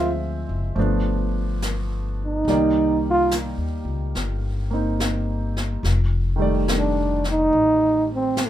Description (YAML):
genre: jazz ballad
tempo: 71 BPM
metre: 4/4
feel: swing 66% on 8ths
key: unclear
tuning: A4 = 440 Hz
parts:
  - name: mellow trombone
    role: melody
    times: 0.0-8.5 s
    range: A3 to F4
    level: -19 LUFS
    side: right 1 dB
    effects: none
  - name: warm concert grand piano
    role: accompaniment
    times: 0.0-8.5 s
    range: Eb3 to E5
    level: -26 LUFS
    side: right 1 dB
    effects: none
  - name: upright bass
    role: bass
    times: 0.0-8.5 s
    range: F1 to Eb2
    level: -24 LUFS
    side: left 1 dB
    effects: none
  - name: jazz brush drum kit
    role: drums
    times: 0.8-8.5 s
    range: brushed snare drum, hi-hat, snare drum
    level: -30 LUFS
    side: left 2 dB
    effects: none
room: light reverb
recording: minimal, uncompressed stereo recording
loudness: -19 LUFS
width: side -12 dB against mid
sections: 0.0-8.5 A section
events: trombone solo 0.0-8.5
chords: 0.0 Dm7b5; 0.8 G7; 2.5 Cm7; 5.8 F13